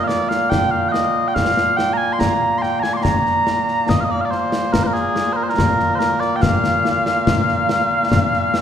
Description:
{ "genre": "scottish traditional, Scottish pipe music", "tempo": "71 BPM", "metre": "3/4", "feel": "straight", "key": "unclear", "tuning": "A4 = 440 Hz", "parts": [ { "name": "mellow small bagpipes", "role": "melody", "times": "0.0-8.6 s", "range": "Bb2 to D6", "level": "-17 LUFS", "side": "equal", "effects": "none" }, { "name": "concert snare drum and concert bass drum", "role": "drums", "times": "0.1-8.6 s", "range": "none", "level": "-21 LUFS", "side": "left 1 dB", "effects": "none" } ], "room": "wet concert hall reverb, RT60 1.9 s", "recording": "recorded in a church or concert hall", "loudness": "-15 LUFS", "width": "side -9 dB against mid", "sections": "0.0-3.9 A section; 3.9-8.6 B section", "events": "none", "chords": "none", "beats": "0.51 | 1.36 2.20 3.05 | 3.89 4.74 5.58 | 6.43 7.27 8.12" }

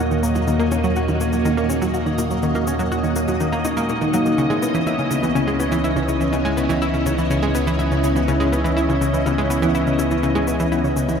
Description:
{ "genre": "ambient, sequencer-driven space music", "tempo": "123 BPM", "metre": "4/4", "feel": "straight", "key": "C# dorian", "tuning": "A4 = 441 Hz", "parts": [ { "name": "string machine, full ensemble", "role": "sustained chords", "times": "0.0-11.2 s", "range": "A#3 to D#5", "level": "-22 LUFS", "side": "equal", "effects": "ensemble chorus" }, { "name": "concert harp", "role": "arpeggios", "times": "0.0-11.2 s", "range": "G#3 to C#5", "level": "-25 LUFS", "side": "left 1 dB", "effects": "auto-pan, tape echo" }, { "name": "analog pluck", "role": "riff", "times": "0.0-11.2 s", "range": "C#3 to F#4", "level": "-22 LUFS", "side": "equal", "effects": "chorus, tape echo" }, { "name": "round analog bass", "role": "bass", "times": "0.0-11.2 s", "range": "C#2 to D#2", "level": "-25 LUFS", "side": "equal", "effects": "none" }, { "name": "shaker and percussion blips", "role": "percussion", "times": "0.1-11.2 s", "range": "none", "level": "-33 LUFS", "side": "left 1 dB", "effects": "tape echo" } ], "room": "wet cathedral reverb, RT60 6.6 s", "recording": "in a vast, echoing space", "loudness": "-17 LUFS", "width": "side -7 dB against mid", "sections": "0.0-11.2 A section", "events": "none", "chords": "0.0 D#m; 4.4 C#madd9", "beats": "| 0.48 0.97 1.45 1.94 | 2.43 2.92 3.40 3.89 | 4.38 4.87 5.36 5.84 | 6.33 6.82 7.31 7.79 | 8.28 8.77 9.26 9.75 | 10.23 10.72" }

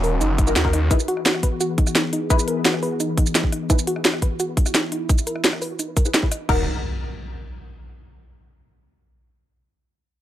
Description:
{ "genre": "dark technical drum and bass", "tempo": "172 BPM", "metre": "4/4", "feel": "straight", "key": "Eb phrygian", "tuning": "A4 = 441 Hz", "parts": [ { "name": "sweeping resonant pad", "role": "sustained chords", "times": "0.0-6.7 s", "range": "Eb3 to G#4", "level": "-29 LUFS", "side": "left 2 dB", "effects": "chorus, sidechain pumping" }, { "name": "soft round pluck", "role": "arpeggios", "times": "0.0-6.7 s", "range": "Eb4 to Eb5", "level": "-27 LUFS", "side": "right 2 dB", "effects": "chorus, sidechain pumping, dub echo" }, { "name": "snarling distorted saw bass", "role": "bass", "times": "0.0-0.9, 6.5-6.7 s", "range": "Eb1 to Eb2", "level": "-21 LUFS", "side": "equal", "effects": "distortion, overdrive" }, { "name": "drum and bass drum kit", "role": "drums", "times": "0.0-6.6 s", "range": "crash cymbal, hi-hat, rim click, shaker, snare drum", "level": "-22 LUFS", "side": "equal", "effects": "none" }, { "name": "electronic kick drum", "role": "drums", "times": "0.4-6.6 s", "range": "none", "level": "-19 LUFS", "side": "equal", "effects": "none" }, { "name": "filtered dub chord stab", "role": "stabs", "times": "0.5-3.8, 6.1-6.6 s", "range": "Eb4 to B4", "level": "-28 LUFS", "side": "left 3 dB", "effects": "lush chorus, dub echo" }, { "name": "impact", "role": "sound effects", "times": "6.5-7.9 s", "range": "none", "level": "-31 LUFS", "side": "equal", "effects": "none" } ], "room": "light reverb", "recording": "none", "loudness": "-18 LUFS", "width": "side -12 dB against mid", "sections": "0.0-6.5 A section; 6.5-7.9 B section", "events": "filter sweep on analog synth pad 0.0-6.5; filter sweep on synth pluck 0.0-6.5; filter sweep on synth stab 0.0-6.5", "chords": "0.0 Ebm; 0.9 E; 6.5 Ebm", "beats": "0.21 0.56 | 0.91 1.26 1.60 1.95 | 2.30 2.65 3.00 3.35 | 3.70 4.05 4.40 4.75 | 5.09 5.44 5.79 6.14 | 6.49 6.84 7.19 7.54" }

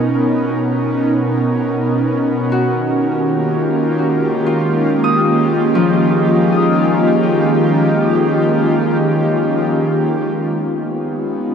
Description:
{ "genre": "ambient", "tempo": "free time", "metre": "none", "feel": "none", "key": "unclear", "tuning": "A4 = 441 Hz", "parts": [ { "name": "airy breathy pad", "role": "sustained chords", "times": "0.0-11.5 s", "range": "B2 to A#4", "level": "-14 LUFS", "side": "right 1 dB", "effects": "chorus" }, { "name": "Celtic harp", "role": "arpeggios", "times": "0.0-9.7 s", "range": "E#3 to D#6", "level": "-21 LUFS", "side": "left 3 dB", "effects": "ping-pong delay" }, { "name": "analog drone", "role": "drone", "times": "4.6-11.5 s", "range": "G#3 to D#4", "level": "-22 LUFS", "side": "left 1 dB", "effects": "chorus, phaser" } ], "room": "wet huge ambient reverb, RT60 8.5 s", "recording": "dreamy mix soaked in reverb", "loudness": "-13 LUFS", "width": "side -7 dB against mid", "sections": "0.0-10.6 A section", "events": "fade-in on harp 0.0-10.6", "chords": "0.0 Bmaj7; 2.7 D#7; 10.6 G#m", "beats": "free time" }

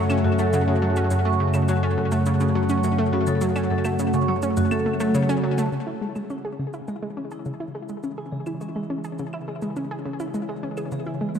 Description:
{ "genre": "ambient, sequencer-driven space music", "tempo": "104 BPM", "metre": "4/4", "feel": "straight", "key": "F# minor, C# minor from 5.7 s", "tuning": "A4 = 440 Hz", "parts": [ { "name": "evolving wavetable pad", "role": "sustained chords", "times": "0.0-11.4 s", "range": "C#3 to F#4", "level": "-25 LUFS", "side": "equal", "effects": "phaser, built-in reverb" }, { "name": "analog pluck", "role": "riff", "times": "0.0-11.4 s", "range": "F#2 to G#4", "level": "-27 LUFS", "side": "equal", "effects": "chorus, ping-pong delay" }, { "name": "round analog bass", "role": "bass", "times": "0.0-5.7 s", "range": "F#2", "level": "-26 LUFS", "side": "equal", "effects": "none" }, { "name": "cabasa and claves", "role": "percussion", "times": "0.1-11.4 s", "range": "none", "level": "-39 LUFS", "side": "equal", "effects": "overdrive, ping-pong delay" }, { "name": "vibraphone with medium mallets", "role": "arpeggios", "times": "0.2-11.3 s", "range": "C#4 to C#6", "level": "-31 LUFS", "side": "moving between left 6 dB and right 2 dB", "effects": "auto-pan, ping-pong delay" } ], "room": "wet lush hall reverb, RT60 3.1 s", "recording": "dark, warm production", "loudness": "-22 LUFS", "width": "side -8 dB against mid", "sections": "0.0-5.7 A section; 5.7-11.4 B section", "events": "fade-in on vibraphone 5.7-11.4; fade-in on ambient pad 5.7-11.4; fade-in on drum 5.7-11.4", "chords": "0.0 F#m; 5.7 C#m", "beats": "0.53 | 1.11 1.69 2.26 2.84 | 3.42 3.99 4.57 5.15 | 5.72 6.30 6.88 7.46 | 8.03 8.61 9.19 9.76 | 10.34 10.92" }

